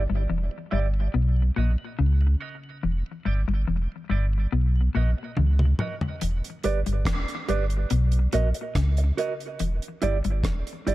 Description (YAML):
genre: dub reggae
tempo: 71 BPM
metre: 4/4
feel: straight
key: unclear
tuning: A4 = 443 Hz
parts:
  - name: warm sub bass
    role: bass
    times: 0.0-10.9 s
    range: E1 to C#2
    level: -23 LUFS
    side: equal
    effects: none
  - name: mellow tonewheel organ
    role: accompaniment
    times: 0.1-6.1 s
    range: E2 to E4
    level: -45 LUFS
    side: equal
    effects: slow rotary speaker, high-pass filter, tape echo
  - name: clean electric guitar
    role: riff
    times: 0.1-10.9 s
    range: E2 to C#3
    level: -30 LUFS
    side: left 5 dB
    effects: tape echo
  - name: mellow electric guitar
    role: accompaniment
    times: 0.7-10.9 s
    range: E4 to D#5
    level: -32 LUFS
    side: right 6 dB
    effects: high-pass filter, tape echo
  - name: deep reggae drum kit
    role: drums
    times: 5.4-10.9 s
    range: hi-hat, kick drum, rim click, toms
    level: -30 LUFS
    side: equal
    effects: none
room: small room ambience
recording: echo-heavy mix, faint mains hum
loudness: -22 LUFS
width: side -17 dB against mid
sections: 0.0-10.9 A section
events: filter sweep 0.0-6.2; drum fill 5.4-6.2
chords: 0.0 Em7; 1.1 Bmaj7; 2.8 Em7; 4.5 Bmaj7; 6.2 Em7; 7.9 Bmaj7; 9.6 Em7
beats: 0.29 1.14 1.98 | 2.83 3.67 4.52 5.37 | 6.21 7.06 7.91 8.75 | 9.60 10.44